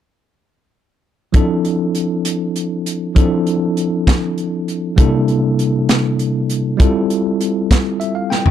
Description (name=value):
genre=electric jazz fusion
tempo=66 BPM (dotted quarters)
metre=6/8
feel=straight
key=D minor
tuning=A4 = 440 Hz
part: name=bell-like tine electric piano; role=accompaniment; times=1.3-8.5 s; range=C3 to G5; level=-16 LUFS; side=equal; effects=fast stereo tremolo
part: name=crisp fusion drum kit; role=drums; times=1.3-8.5 s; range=hi-hat, kick drum, snare drum, toms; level=-14 LUFS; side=equal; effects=none
room=little or no reverb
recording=none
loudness=-14 LUFS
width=side -10 dB against mid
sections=1.3-8.5 A section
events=tine electric piano fill 7.7-8.5; drum fill 8.3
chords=1.3 Dm9; 5.0 C13; 6.8 Fmaj9